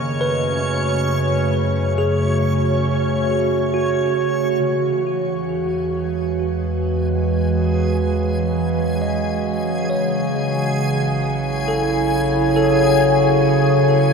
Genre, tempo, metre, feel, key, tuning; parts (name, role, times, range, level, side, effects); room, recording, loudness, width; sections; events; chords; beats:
ambient; 68 BPM; 3/4; straight; A4 = 440 Hz
warbly tape-like pad; sustained chords; 0.0-14.1 s; Db3 to Eb5; -18 LUFS; right 2 dB; chorus, built-in reverb
deep rumbling drone; bass; 0.2-14.1 s; A1 to Gb2; -26 LUFS; equal; built-in reverb
backwards swelling texture; texture; 0.0-14.1 s; Db4 to G#5; -26 LUFS; equal; built-in reverb, shimmer reverb
bell-like tine electric piano; arpeggios; 0.2-14.1 s; Gb4 to Eb5; -26 LUFS; left 1 dB; ping-pong delay, shimmer reverb
pedal harmonium; drone; 4.6-14.1 s; Db3 to F#3; -28 LUFS; left 2 dB
wet huge ambient reverb, RT60 8.3 s; in a vast, echoing space; -17 LUFS; side -5 dB against mid
0.0-4.6 A section; 4.6-14.1 B section
fade-in on tine electric piano 4.6-14.1; fade-in on harmonium 4.6-14.1; fade-in on synth texture 4.6-14.1; fade-out on synth drone 4.6-14.1; filter sweep on ambient pad 4.6-14.1
0.0 Gbm; 4.6 Eadd9; 9.9 A
0.21 1.10 | 1.98 2.86 3.74 | 4.62 5.51 6.39 | 7.27 8.15 9.04 | 9.92 10.80 11.68 | 12.57 13.45